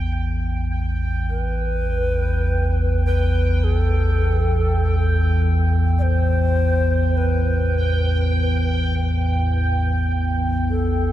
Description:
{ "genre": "ambient", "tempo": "51 BPM", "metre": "4/4", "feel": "straight", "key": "A minor", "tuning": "A4 = 440 Hz", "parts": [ { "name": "deep rumbling drone", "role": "drone", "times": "0.0-11.1 s", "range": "A1 to E2", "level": "-18 LUFS", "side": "equal", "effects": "built-in reverb" }, { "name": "bubbling stepped-filter texture", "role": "texture", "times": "0.0-11.1 s", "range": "G5", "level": "-29 LUFS", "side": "right 2 dB", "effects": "chorus, built-in reverb" }, { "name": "bright long shakuhachi", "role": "melody", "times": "1.3-11.1 s", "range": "A4 to D5", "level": "-27 LUFS", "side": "left 1 dB", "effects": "tape echo" }, { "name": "deep dark ambient pad", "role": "sustained chords", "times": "10.7-11.1 s", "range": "none", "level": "barely audible", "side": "none", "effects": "none" } ], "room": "moderate huge ambient reverb, RT60 6.9 s", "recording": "none", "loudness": "-18 LUFS", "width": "side -13 dB against mid", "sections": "0.0-11.1 A section", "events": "fade-in on shakuhachi 0.0-11.1; filter sweep on synth drone 0.0-11.1", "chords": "0.0 Asus2" }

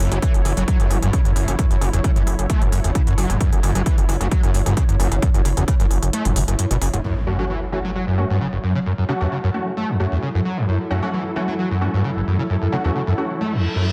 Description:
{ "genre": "driving peak-time techno", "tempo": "132 BPM", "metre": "4/4", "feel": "straight", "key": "F# minor", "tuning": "A4 = 440 Hz", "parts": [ { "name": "screaming distorted acid line", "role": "riff", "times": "0.0-13.9 s", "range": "F#1 to A3", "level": "-25 LUFS", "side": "equal", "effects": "distortion, ensemble chorus, cassette tape, sidechain pumping, tape echo" }, { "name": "gritty driven synth bass", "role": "bass", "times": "0.0-7.0 s", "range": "E1 to F#2", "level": "-23 LUFS", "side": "equal", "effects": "tube saturation, sidechain pumping" }, { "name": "deep dark ambient pad", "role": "drone", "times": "0.0-7.1 s", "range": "F#3", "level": "-39 LUFS", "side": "equal", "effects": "none" }, { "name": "electronic hi-hat", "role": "drums", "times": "0.0-7.0 s", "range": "none", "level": "-32 LUFS", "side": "equal", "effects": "sidechain pumping on hats, sidechain pumping on cymbals" }, { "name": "granular cloud pad", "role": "texture", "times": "0.0-13.9 s", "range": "F#3 to C#5", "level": "-31 LUFS", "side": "equal", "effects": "built-in reverb, sidechain pumping" }, { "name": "electronic kick drum", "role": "drums", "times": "0.2-5.8 s", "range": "none", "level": "-21 LUFS", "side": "equal", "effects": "none" }, { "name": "impact and reverse cymbal", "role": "sound effects", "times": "7.0-8.9, 13.5-13.9 s", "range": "none", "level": "-31 LUFS", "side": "equal", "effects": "none" }, { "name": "rave stab", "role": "stabs", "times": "7.3-13.3 s", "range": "A3 to F#4", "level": "-29 LUFS", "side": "equal", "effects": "chorus, built-in reverb, sidechain pumping, tape echo" } ], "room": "light reverb, digital ambience", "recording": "dense, heavily limited modern master", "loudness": "-20 LUFS", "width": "mono", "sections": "0.0-7.0 A section; 7.0-13.9 B section", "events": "kick drops out 6.1-7.0; impact 7.0-8.9; reverse cymbal 13.5-13.9", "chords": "0.0 F#m" }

